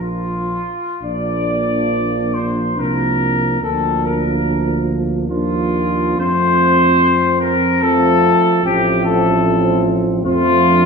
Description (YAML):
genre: classical, hymn-like piece for brass band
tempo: 71 BPM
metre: 3/4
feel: uneven beats, rubato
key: Bb major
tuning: A4 = 441 Hz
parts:
  - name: dark trumpet section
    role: melody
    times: 0.0-10.9 s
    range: F4 to D5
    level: -17 LUFS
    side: left 3 dB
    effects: none
  - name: dark French horn section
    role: second line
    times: 0.0-10.9 s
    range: C4 to D4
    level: -23 LUFS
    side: right 1 dB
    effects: none
  - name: dark euphonium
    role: accompaniment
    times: 0.0-10.9 s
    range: A3 to Bb3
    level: -25 LUFS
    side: equal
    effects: none
  - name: dark euphonium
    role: accompaniment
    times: 0.0-10.9 s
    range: F3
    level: -20 LUFS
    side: right 4 dB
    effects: none
  - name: mellow tuba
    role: bass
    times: 0.0-10.9 s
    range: A1 to F2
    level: -21 LUFS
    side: equal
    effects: none
room: wet stone room reverb, RT60 1.3 s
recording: heard from further back in the room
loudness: -14 LUFS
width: side -5 dB against mid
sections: 0.0-1.0 A section; 1.0-10.9 B section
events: none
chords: 0.0 Bb; 3.6 Bb/D; 6.2 F; 8.6 F/A